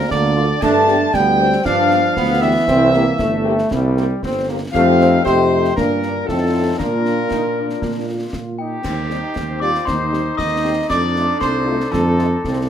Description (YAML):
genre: military-style march for wind band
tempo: 117 BPM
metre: 2/4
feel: straight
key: unclear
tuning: A4 = 440 Hz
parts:
  - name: warm cornet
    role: melody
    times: 0.0-12.4 s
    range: G4 to A5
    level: -22 LUFS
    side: equal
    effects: none
  - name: clear woodwind section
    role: second line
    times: 0.0-12.7 s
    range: Eb4 to A5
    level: -23 LUFS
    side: left 2 dB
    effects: none
  - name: mellow euphonium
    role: second line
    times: 0.0-8.3 s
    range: A2 to A3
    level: -20 LUFS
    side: right 2 dB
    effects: none
  - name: warm trombone section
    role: sustained chords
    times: 0.0-12.6 s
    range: G3 to F4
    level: -24 LUFS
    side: right 1 dB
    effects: none
  - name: mellow tuba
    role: bass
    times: 0.0-12.7 s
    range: G1 to Bb2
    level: -20 LUFS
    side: right 2 dB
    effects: none
  - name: concert snare drum, concert bass drum and clash cymbals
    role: drums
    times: 0.1-12.7 s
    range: none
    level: -29 LUFS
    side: left 1 dB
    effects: none
  - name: mellow French horn section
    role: accompaniment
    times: 0.4-12.3 s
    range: G3 to Bb4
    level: -23 LUFS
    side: left 6 dB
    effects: none
  - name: glockenspiel with rubber mallets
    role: second line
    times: 8.6-12.4 s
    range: G5 to Eb6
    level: -24 LUFS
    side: left 4 dB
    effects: none
room: moderate studio reverb, RT60 0.8 s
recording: minimal, uncompressed stereo recording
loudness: -15 LUFS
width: side -9 dB against mid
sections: 0.0-8.8 A section; 8.8-12.7 A section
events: none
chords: 0.0 Bb/D; 0.6 G7; 2.7 C7; 4.7 F9; 5.8 Gm; 6.3 F7; 6.8 Bb; 8.8 Cm/Eb; 10.9 F7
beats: 0.10 | 0.62 1.13 | 1.65 2.16 | 2.68 3.19 | 3.71 4.22 | 4.73 5.25 | 5.76 6.28 | 6.79 7.30 | 7.82 8.33 | 8.85 9.36 | 9.88 10.39 | 10.90 11.42 | 11.93 12.45